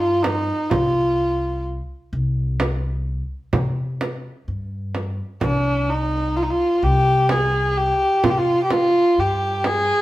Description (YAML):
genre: Turkish makam ensemble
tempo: 128 BPM (eighths)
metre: 10/8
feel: straight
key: C makam ussak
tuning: A4 = 438 Hz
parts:
  - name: rich kamancheh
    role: melody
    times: 0.0-10.0 s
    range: D4-34c to Ab4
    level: -18 LUFS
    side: equal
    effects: none
  - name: upright bass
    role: bass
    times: 0.0-9.9 s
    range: C2 to C3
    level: -24 LUFS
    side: left 1 dB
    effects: none
  - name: frame drum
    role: percussion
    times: 0.2-9.9 s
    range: none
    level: -24 LUFS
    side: right 2 dB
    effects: none
room: moderate large studio reverb, RT60 0.9 s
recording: band playing live in one room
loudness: -18 LUFS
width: side -16 dB against mid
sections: 0.0-10.0 A section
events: none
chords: none